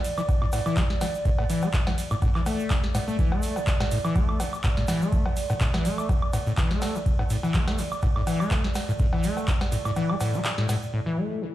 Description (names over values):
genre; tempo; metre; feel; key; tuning
acid house; 124 BPM; 4/4; swing 54% on 16ths; unclear; A4 = 440 Hz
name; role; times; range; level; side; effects
booming analog drum machine; drums; 0.0-10.8 s; cowbell, handclaps, hi-hat, ride cymbal, snare drum, woodblock; -31 LUFS; equal; overdrive
tube shaker; percussion; 0.0-10.9 s; none; -45 LUFS; equal; none
warbly tape-like pad; texture; 0.0-11.5 s; E4 to G5; -34 LUFS; right 4 dB; chorus, built-in reverb, sidechain pumping
acid bass, saw; riff; 0.2-11.5 s; A2 to A3; -27 LUFS; left 1 dB; overdrive, lush chorus, sidechain pumping, ping-pong delay
electronic kick drum; drums; 0.3-9.6 s; none; -25 LUFS; equal; overdrive
room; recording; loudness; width
light reverb; played on a big sound system in a bare room, large studio reverb; -22 LUFS; side -14 dB against mid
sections
0.0-10.9 A section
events
drop 0.0-10.9; kick drops out 10.0-10.9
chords
0.0 A5